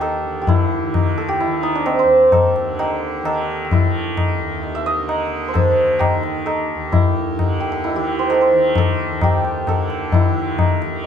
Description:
indian classical, Hindustani; 131 BPM; 7/4; straight; Eb raga marwa; A4 = 440 Hz
santur; melody; 0.0-11.1 s; C4 to G5; -19 LUFS; right 2 dB
tanpura; drone; 0.0-11.1 s; Eb2 to Eb3; -25 LUFS; equal
tabla; percussion; 0.0-11.1 s; -19 LUFS; left 4 dB
wet large studio reverb, RT60 1.2 s; band playing live in one room; -16 LUFS; side -8 dB against mid
0.0-11.1 A section
0.02 | 0.48 0.94 1.41 1.87 2.33 2.79 3.26 | 3.72 4.18 4.64 5.10 5.56 6.02 6.48 | 6.94 7.39 7.85 8.31 8.77 9.22 9.68 | 10.14 10.59 11.05

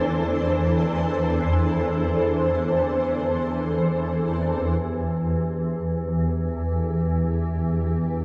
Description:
dark ambient drone; free time; E minor; A4 = 441 Hz
granular cloud pad; sustained chords; 0.0-8.2 s; E3 to C5; -28 LUFS; equal; built-in reverb, ensemble chorus
swarming drone; drone; 0.0-8.2 s; E2 to E3; -26 LUFS; equal; built-in reverb, subtle chorus
bronze singing bowl; texture; 0.0-8.2 s; E4 to G4; -47 LUFS; equal
wet plate reverb, RT60 3.4 s; dreamy mix soaked in reverb; -24 LUFS; mono
0.0-4.8 A section; 4.8-8.2 B section
0.0 Am/E; 4.8 Em
free time

